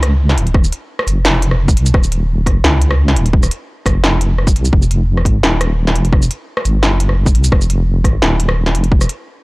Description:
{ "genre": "half-time drum and bass", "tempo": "172 BPM", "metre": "4/4", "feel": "half-time", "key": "Eb dorian", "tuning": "A4 = 441 Hz", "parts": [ { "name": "deep soft wobble bass", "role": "bass", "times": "0.0-9.1 s", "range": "Eb1 to Db2", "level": "-13 LUFS", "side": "equal", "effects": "chorus" }, { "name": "industrial drum kit", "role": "drums", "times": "0.0-9.2 s", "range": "hi-hat, rim click, shaker, snare drum", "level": "-18 LUFS", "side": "equal", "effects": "none" }, { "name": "electronic kick drum", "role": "drums", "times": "0.5-9.0 s", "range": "none", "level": "-13 LUFS", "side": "equal", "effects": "overdrive" } ], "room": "little or no reverb", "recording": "dry, gritty hardware recording, cassette tape", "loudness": "-11 LUFS", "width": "side -23 dB against mid", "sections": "0.0-9.4 A section", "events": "none", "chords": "none" }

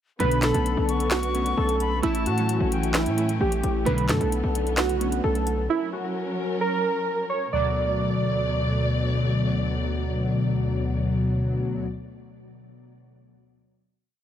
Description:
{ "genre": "hip hop, trap", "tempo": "131 BPM", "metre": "4/4", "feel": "half-time", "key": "B minor", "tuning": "A4 = 440 Hz", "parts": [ { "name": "warbly lo-fi synth keys", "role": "melody", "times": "0.2-8.9 s", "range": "E4 to D5", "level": "-26 LUFS", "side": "right 2 dB", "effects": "chorus, low-pass filter, tape echo" }, { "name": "jazz flute", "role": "second line", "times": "0.2-3.8 s", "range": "G5 to C#6", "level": "-32 LUFS", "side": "left 4 dB", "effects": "tape echo" }, { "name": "glassy digital keys", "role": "accompaniment", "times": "0.2-5.7 s", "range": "F#3 to E4", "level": "-30 LUFS", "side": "right 1 dB", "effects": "chorus, low-pass filter" }, { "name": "dark symphonic string section", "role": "sustained chords", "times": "0.2-11.9 s", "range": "B2 to D5", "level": "-32 LUFS", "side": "equal", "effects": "none" }, { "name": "analog synth brass", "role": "stabs", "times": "0.2-0.5, 3.9-4.2, 7.5-11.9 s", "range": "D2 to F#3", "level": "-24 LUFS", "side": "left 1 dB", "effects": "chorus" }, { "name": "hard-hitting 808-style bass", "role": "bass", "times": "0.2-5.7 s", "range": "A1 to A2", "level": "-26 LUFS", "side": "equal", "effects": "none" }, { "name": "trap drum kit", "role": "drums", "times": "0.2-5.6 s", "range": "handclaps, hi-hat, snare drum", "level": "-28 LUFS", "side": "equal", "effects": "none" } ], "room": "little or no reverb", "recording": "none", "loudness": "-22 LUFS", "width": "side -10 dB against mid", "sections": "0.2-7.5 hook; 7.5-11.2 final chord", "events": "none", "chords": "0.2 Bm7; 2.0 A; 3.9 Bm7; 5.7 F#; 7.5 Bm7" }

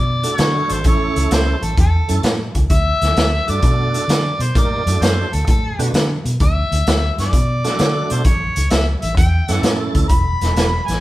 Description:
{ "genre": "electric blues shuffle", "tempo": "130 BPM", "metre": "4/4", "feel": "swing 68% on 8ths", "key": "unclear", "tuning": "A4 = 440 Hz", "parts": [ { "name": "mellow harmonica", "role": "melody", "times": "0.0-11.0 s", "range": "A4 to B5", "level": "-22 LUFS", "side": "left 1 dB", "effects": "overdrive" }, { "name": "vintage muted fingered electric bass", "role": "bass", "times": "0.0-11.0 s", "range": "E1 to D3", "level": "-19 LUFS", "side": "equal", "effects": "none" }, { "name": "tonewheel organ", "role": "accompaniment", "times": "0.2-10.1 s", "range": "A3 to B4", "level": "-25 LUFS", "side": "right 3 dB", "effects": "slow rotary speaker, overdrive, chorus vibrato" }, { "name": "raw garage drum kit", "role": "drums", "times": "0.2-10.9 s", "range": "hi-hat, kick drum, snare drum", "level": "-18 LUFS", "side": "equal", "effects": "none" } ], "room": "moderate stone room reverb, RT60 1.3 s", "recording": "band playing live in one room", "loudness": "-14 LUFS", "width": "side -16 dB against mid", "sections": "0.0-11.0 A section", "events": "none", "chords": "0.0 D; 0.8 A; 2.7 D; 8.2 A; 10.1 E5" }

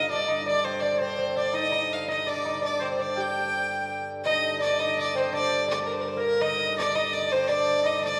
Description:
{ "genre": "medieval dance", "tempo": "111 BPM (dotted quarters)", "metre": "6/8", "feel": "straight", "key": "unclear", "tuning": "A4 = 442 Hz", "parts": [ { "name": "clear fiddle", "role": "melody", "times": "0.0-8.2 s", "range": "Bb4 to G5", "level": "-29 LUFS", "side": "equal", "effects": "none" }, { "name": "edgy shawm", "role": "second line", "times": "0.0-8.2 s", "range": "Bb4 to G5", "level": "-34 LUFS", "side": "equal", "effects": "none" }, { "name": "lute", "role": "second line", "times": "0.0-8.2 s", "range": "Bb3 to G4", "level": "-32 LUFS", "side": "equal", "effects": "none" }, { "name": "pedal harmonium", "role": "drone", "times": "0.0-8.2 s", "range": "G2 to D3", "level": "-38 LUFS", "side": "equal", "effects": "none" } ], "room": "wet concert hall reverb, RT60 2.4 s", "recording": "recorded in a church or concert hall, small room ambience", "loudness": "-26 LUFS", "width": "mono", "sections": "0.0-4.2 A section; 4.2-8.2 B section", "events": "none", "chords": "none" }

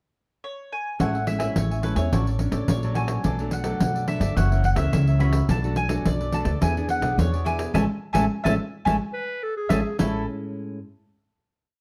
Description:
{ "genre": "samba and choro", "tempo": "107 BPM", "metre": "4/4", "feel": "straight", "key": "A major", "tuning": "A4 = 440 Hz", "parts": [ { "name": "mandolin", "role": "melody", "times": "0.4-10.3 s", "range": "A4 to B5", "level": "-31 LUFS", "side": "equal", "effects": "plate reverb" }, { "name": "cavaquinho", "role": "accompaniment", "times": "1.0-10.2 s", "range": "D4 to G#5", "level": "-36 LUFS", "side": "equal", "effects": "none" }, { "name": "nylon-string guitar", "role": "accompaniment", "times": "1.0-10.8 s", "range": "F#2 to G#4", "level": "-32 LUFS", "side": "equal", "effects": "none" }, { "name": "upright bass", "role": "bass", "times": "1.0-10.3 s", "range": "F#1 to E2", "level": "-26 LUFS", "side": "equal", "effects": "none" }, { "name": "pandeiro", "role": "percussion", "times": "1.0-10.1 s", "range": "none", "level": "-30 LUFS", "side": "equal", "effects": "none" }, { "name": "clear clarinet", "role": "second line", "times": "9.1-10.3 s", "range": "E4 to B4", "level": "-32 LUFS", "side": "equal", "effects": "none" } ], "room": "moderate studio reverb, RT60 0.7 s", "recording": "dark, warm production", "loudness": "-24 LUFS", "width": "mono", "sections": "0.0-1.0 pickup bar; 1.0-10.0 A section; 10.0-11.8 final chord", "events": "band accent 7.7-10.0", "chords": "0.0 N.C.; 1.0 Amaj7; 2.1 Dmaj7/A; 3.2 Bm7; 4.4 F#7; 5.5 Bm7; 6.6 E7; 7.7 Amaj7" }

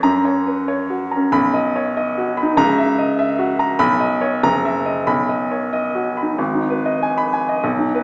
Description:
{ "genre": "classical, virtuoso piano study", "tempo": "91-99 BPM", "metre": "2/4", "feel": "rubato", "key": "B major", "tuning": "A4 = 440 Hz", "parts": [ { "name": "clear baby grand piano", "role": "solo", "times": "0.0-8.0 s", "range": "F#1 to B5", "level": "-19 LUFS", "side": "equal", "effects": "none" } ], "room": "wet recital hall reverb, RT60 1.5 s", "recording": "heard from further back in the room, small speaker sound", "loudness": "-19 LUFS", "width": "mono", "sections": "0.0-6.4 A section; 6.4-8.0 B section", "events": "none", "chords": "0.0 F#; 1.3 B; 2.6 F#7/C#; 3.8 B; 4.4 F#7; 5.1 B; 6.4 G#m" }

